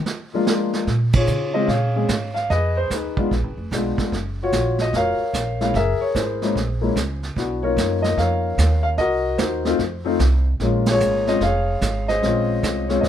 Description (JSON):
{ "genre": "jazz piano trio", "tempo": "148 BPM", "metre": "4/4", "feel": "swing 65% on 8ths", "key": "Bb minor", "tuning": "A4 = 440 Hz", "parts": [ { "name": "vintage brush drum kit", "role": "drums", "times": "0.1-13.1 s", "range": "brushed snare drum, hi-hat, kick drum, ride cymbal, snare drum", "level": "-25 LUFS", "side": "right 4 dB", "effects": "none" }, { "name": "warm upright piano", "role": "melody", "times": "0.3-13.1 s", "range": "F3 to F5", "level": "-21 LUFS", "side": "left 2 dB", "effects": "none" }, { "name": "upright bass", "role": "bass", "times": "0.9-13.1 s", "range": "F1 to Db3", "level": "-23 LUFS", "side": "right 1 dB", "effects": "none" } ], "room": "little or no reverb", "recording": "minimal, uncompressed stereo recording", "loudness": "-18 LUFS", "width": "side -10 dB against mid", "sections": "0.9-13.1 A section", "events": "band accent 1.1, 10.8", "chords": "0.1 Bb7; 0.9 Bbm7; 2.5 Fm7b5; 3.3 Bb7b9; 4.1 Gbmaj7; 5.7 Gb9; 7.4 Bmaj9#11; 9.0 Cm7b5; 9.8 F5; 10.6 Bbm9", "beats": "0.07 0.47 | 0.88 1.28 1.69 2.09 | 2.50 2.90 3.31 3.71 | 4.12 4.52 4.93 5.33 | 5.74 6.14 6.55 6.95 | 7.36 7.76 8.17 8.57 | 8.98 9.39 9.79 10.20 | 10.60 11.01 11.41 11.82 | 12.22 12.63 13.03" }